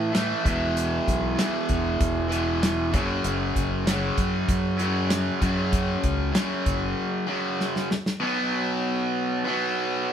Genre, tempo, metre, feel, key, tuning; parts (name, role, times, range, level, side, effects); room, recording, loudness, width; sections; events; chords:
classic rock; 96 BPM; 4/4; straight; A4 = 442 Hz
raw garage guitar; riff; 0.0-10.1 s; E2 to B3; -25 LUFS; equal; overdrive
fingered electric bass; bass; 0.0-6.9 s; E1 to A2; -28 LUFS; equal
damped 70s drum kit; drums; 0.1-8.2 s; hi-hat, kick drum, snare drum; -26 LUFS; equal
moderate stone room reverb, RT60 1.1 s; band playing live in one room; -22 LUFS; side -9 dB against mid
0.0-8.2 A section; 8.2-10.1 B section
break 7.0-8.2; drum fill 7.6-8.2
0.5 E5; 2.9 F#5; 8.2 B5